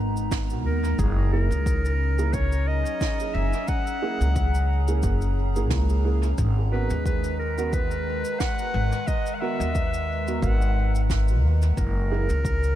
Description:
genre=ambient dub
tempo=89 BPM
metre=4/4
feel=swing 55% on 16ths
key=G# minor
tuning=A4 = 440 Hz
part: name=warbly tape-like pad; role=sustained chords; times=0.0-12.8 s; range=D#3 to A#5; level=-32 LUFS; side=left 1 dB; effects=chorus, built-in reverb
part: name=upright bass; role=bass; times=0.0-12.8 s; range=F#1 to D#2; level=-23 LUFS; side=equal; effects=none
part: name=cabasa and snare drum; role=drums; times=0.2-12.8 s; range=none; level=-38 LUFS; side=right 5 dB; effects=dub echo
part: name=electronic kick drum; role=drums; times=0.3-12.6 s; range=none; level=-27 LUFS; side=equal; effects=none
part: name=warm clarinet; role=melody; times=0.7-12.8 s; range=G#4 to F#5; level=-31 LUFS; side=equal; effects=dub echo
part: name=dark upright piano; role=stabs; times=1.3-12.3 s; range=A#3 to A#4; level=-34 LUFS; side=right 6 dB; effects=dub echo
room=studio reverb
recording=none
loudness=-22 LUFS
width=side -12 dB against mid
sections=0.0-12.8 A section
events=none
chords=0.0 G#madd9; 1.0 F#9; 6.4 G#m9; 11.8 F#9

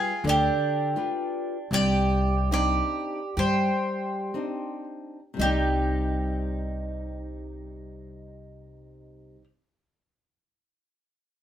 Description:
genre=fado-style ballad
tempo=56-85 BPM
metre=4/4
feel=rubato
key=C minor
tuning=A4 = 440 Hz
part: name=bowl-back mandolin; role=melody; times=0.0-9.4 s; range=G4 to D5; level=-28 LUFS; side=equal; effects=none
part: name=picked twelve-string acoustic guitar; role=second line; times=0.0-9.4 s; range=D4 to G4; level=-32 LUFS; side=right 2 dB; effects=none
part: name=flamenco guitar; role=accompaniment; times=0.0-9.5 s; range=C3 to D5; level=-32 LUFS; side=left 2 dB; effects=none
part: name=upright bass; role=bass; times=0.2-9.4 s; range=C2 to G2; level=-28 LUFS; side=equal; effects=none
room=wet studio reverb, RT60 0.6 s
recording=band playing live in one room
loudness=-24 LUFS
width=side -10 dB against mid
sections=0.0-5.4 A section; 5.4-9.6 B section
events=slowing down 0.0-5.4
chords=0.0 G7; 1.7 Cmadd9

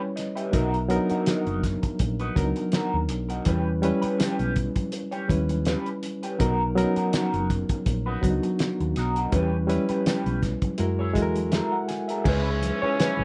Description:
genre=lush 1970s-style soul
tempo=82 BPM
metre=4/4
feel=swing 54% on 16ths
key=B major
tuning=A4 = 440 Hz
part: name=barky reed electric piano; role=accompaniment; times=0.0-13.2 s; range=F#3 to G#5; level=-29 LUFS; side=equal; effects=overdrive, fast tremolo
part: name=electric guitar through a small old amp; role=riff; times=0.2-13.2 s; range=C#4 to C#5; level=-33 LUFS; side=equal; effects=wah
part: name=cloth-damped thuddy drum kit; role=drums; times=0.2-13.2 s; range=crash cymbal, hi-hat, kick drum, snare drum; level=-30 LUFS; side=equal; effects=none
part: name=hollow-body short-scale fingered electric bass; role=bass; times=0.5-13.2 s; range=F#1 to F#2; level=-30 LUFS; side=equal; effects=none
part: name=congas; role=percussion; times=0.5-13.2 s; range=none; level=-40 LUFS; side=equal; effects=none
part: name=clear horn section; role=stabs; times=12.2-13.2 s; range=G#2 to C#4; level=-31 LUFS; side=equal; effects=none
room=light reverb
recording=rough home demo mix, nothing above 10.3 kHz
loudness=-25 LUFS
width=mono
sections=0.0-12.3 A section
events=none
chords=0.0 Em6; 0.5 Bmaj7; 3.5 Em6; 6.4 Bmaj7; 9.3 Em6; 10.8 F#9; 12.3 C#m7

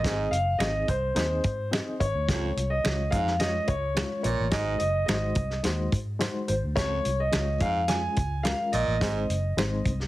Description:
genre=uptempo 1960s-style soul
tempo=107 BPM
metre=4/4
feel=straight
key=Db major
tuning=A4 = 440 Hz
part: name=warm concert grand piano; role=melody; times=0.0-10.1 s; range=C5 to Ab5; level=-29 LUFS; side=equal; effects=none
part: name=barky reed electric piano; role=accompaniment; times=0.0-9.9 s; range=Ab3 to Eb5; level=-34 LUFS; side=left 2 dB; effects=overdrive, fast tremolo, plate reverb
part: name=edgy baritone saxophone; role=riff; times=0.0-9.2 s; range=F2 to Bb2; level=-34 LUFS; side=right 5 dB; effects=none
part: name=warm soul drum kit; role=drums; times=0.0-10.1 s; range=hi-hat, kick drum, snare drum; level=-30 LUFS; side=equal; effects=none
part: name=vintage muted fingered electric bass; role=bass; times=0.1-10.1 s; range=Gb1 to Ab2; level=-30 LUFS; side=equal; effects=none
part: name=finger snaps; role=percussion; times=0.6-9.7 s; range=none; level=-35 LUFS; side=right 5 dB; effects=none
room=light reverb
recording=heavily compressed radio sound, multiband compression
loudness=-24 LUFS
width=side -16 dB against mid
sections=0.0-10.1 A section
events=none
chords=0.0 Ab; 2.3 Db; 4.5 Ab7; 6.8 Db; 9.0 Ab

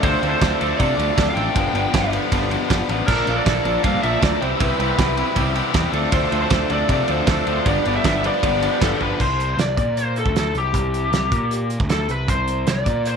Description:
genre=indie rock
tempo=157 BPM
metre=4/4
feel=straight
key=C major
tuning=A4 = 440 Hz
part: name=lead guitar through a small cranked amp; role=melody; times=0.0-13.1 s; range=G4 to G5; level=-23 LUFS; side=equal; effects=overdrive, slapback echo
part: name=bright tonewheel organ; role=sustained chords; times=0.0-9.2 s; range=C4 to E6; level=-31 LUFS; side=equal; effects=slow rotary speaker
part: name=raw garage guitar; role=riff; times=0.0-9.2 s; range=E3 to G4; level=-24 LUFS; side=left 15 dB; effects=overdrive
part: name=twangy electric guitar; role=riff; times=0.0-9.2 s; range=G2 to A4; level=-26 LUFS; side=right 15 dB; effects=analog chorus, slapback echo
part: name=fuzz picked electric bass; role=bass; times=0.0-13.2 s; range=G1 to C3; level=-24 LUFS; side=equal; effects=overdrive
part: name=loose indie drum kit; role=drums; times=0.0-13.1 s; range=crash cymbal, hi-hat, kick drum, ride cymbal, snare drum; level=-22 LUFS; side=right 2 dB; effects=none
room=small room ambience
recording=1960s-style stereo with parts hard left and right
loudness=-17 LUFS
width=side -6 dB against mid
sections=0.0-9.2 A section; 9.2-13.2 B section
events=drum fill 9.0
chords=0.0 Dm7; 1.6 G7; 3.1 Bbmaj7; 4.4 Cmaj7; 5.9 Dm7; 7.7 G7; 9.2 C5

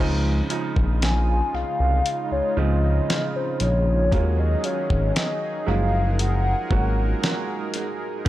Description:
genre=contemporary R&B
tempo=58 BPM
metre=4/4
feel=straight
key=Db major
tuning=A4 = 441 Hz
part: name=clear baby grand piano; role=accompaniment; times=0.0-8.3 s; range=Db3 to Gb4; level=-28 LUFS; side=right 4 dB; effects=analog delay
part: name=warm analog pad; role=sustained chords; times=0.0-8.3 s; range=Db3 to Bb4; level=-32 LUFS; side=right 1 dB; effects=chorus, tremolo
part: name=smooth synth bass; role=bass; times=0.0-8.3 s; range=Gb1 to Eb2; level=-21 LUFS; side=equal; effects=none
part: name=dusty soul sampler-style drum kit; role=drums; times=0.5-8.3 s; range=hi-hat, kick drum, snare drum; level=-25 LUFS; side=equal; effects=analog delay
part: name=hollow clarinet-like synth lead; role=melody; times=1.0-7.2 s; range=C5 to Ab5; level=-26 LUFS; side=left 1 dB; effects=chorus, analog delay
room=little or no reverb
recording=echo-heavy mix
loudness=-20 LUFS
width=side -14 dB against mid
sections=0.0-8.3 A section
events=none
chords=0.0 Dbmaj9; 4.1 Ebm11; 5.7 Gbmaj9

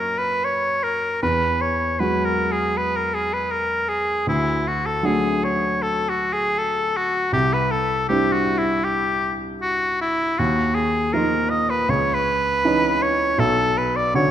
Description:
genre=classical, impressionist duo for oboe and grand piano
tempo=79 BPM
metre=4/4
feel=rubato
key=unclear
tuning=A4 = 439 Hz
part: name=clear oboe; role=melody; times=0.0-14.3 s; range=E4 to D#5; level=-20 LUFS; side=equal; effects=none
part: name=warm baby grand piano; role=accompaniment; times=0.0-14.3 s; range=B1 to F#4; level=-23 LUFS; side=right 1 dB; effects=none
room=wet scoring stage reverb, RT60 1.6 s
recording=none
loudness=-19 LUFS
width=side -10 dB against mid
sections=0.0-14.3 A section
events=none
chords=0.0 F#maj7; 1.2 Eadd9; 4.3 D; 7.3 Cadd9; 10.4 D#sus2; 11.9 C#madd9; 13.4 Bmadd9

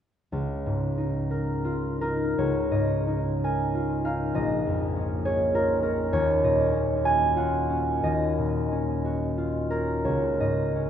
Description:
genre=classical, solo harp piece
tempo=52-69 BPM (dotted quarters)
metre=6/8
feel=rubato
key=Db major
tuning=A4 = 439 Hz
part: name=concert harp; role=solo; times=0.3-10.9 s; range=Bb1 to Ab5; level=-23 LUFS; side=equal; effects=none
room=wet cathedral reverb, RT60 6.5 s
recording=in a vast, echoing space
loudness=-23 LUFS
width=side -9 dB against mid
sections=0.3-2.4 A section; 2.4-10.9 B section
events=none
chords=0.3 Db69; 4.4 Bbm7; 6.1 Ebm9; 10.0 Db69

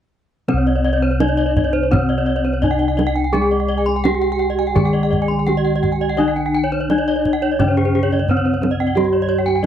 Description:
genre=Balinese gamelan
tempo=84 BPM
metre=4/4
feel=straight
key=C pelog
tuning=A4 = 435 Hz
part: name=gamelan-type bronze metallophone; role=melody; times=0.5-9.6 s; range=C4 to Ab4-20c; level=-19 LUFS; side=equal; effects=none
part: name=gamelan-type bronze metallophone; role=accompaniment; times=0.5-9.7 s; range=C3 to Ab3-20c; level=-25 LUFS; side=left 3 dB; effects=none
part: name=gamelan-type bronze metallophone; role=arpeggios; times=0.5-9.7 s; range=Ab4-20c to C6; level=-24 LUFS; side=left 5 dB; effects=none
part: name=gamelan-type bossed gongs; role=bass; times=0.5-9.7 s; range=C2 to Ab4-20c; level=-21 LUFS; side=equal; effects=none
part: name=kendang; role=percussion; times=0.5-9.7 s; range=none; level=-22 LUFS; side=right 3 dB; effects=none
part: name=gamelan-type bronze metallophone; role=arpeggios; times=0.6-9.6 s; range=C5 to Ab5-20c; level=-25 LUFS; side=right 8 dB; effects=none
room=light reverb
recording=dry, close 1970s-style studio recording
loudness=-15 LUFS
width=side -10 dB against mid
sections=0.5-9.7 A section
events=none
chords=none

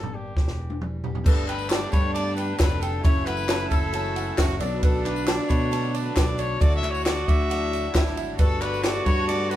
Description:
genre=indie folk with a building arrangement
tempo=134 BPM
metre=4/4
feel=straight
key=unclear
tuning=A4 = 440 Hz
part: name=clear trumpet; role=melody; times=0.0-9.6 s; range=G4 to E5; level=-30 LUFS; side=left 3 dB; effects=none
part: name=fingerpicked steel-string acoustic guitar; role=accompaniment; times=0.0-3.0 s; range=E2 to G4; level=-43 LUFS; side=left 1 dB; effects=none
part: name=picked electric bass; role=bass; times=0.0-9.6 s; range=E1 to B2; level=-30 LUFS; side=equal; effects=none
part: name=compact cocktail drum kit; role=drums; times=0.0-9.6 s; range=crash cymbal, kick drum, ride cymbal, snare drum, toms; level=-23 LUFS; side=equal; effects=none
part: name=mellow tonewheel organ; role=sustained chords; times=1.2-9.6 s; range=D3 to G5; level=-39 LUFS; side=right 1 dB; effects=none
part: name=warm cello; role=second line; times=1.3-9.6 s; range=D4 to F#4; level=-31 LUFS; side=right 2 dB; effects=none
part: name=dark grand piano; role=accompaniment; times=1.3-9.6 s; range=F#1 to B4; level=-36 LUFS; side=left 3 dB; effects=none
part: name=picked twelve-string acoustic guitar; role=accompaniment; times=1.3-9.6 s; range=F#2 to A4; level=-36 LUFS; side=left 4 dB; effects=none
part: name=clear upright piano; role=arpeggios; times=1.3-9.6 s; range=D4 to E6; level=-34 LUFS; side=right 5 dB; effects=none
part: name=tambourine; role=percussion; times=1.3-9.6 s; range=none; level=-46 LUFS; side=right 7 dB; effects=none
part: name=group handclap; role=percussion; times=1.5-8.9 s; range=none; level=-36 LUFS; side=left 4 dB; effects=none
room=moderate studio reverb, RT60 0.6 s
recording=band playing live in one room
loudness=-21 LUFS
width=side -13 dB against mid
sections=0.0-1.3 A section; 1.3-9.6 B section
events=drum fill 0.4-1.3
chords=0.4 Em; 1.3 Gadd9; 3.0 F#m7; 4.6 Bm7; 6.6 Dadd9; 8.4 Gadd9

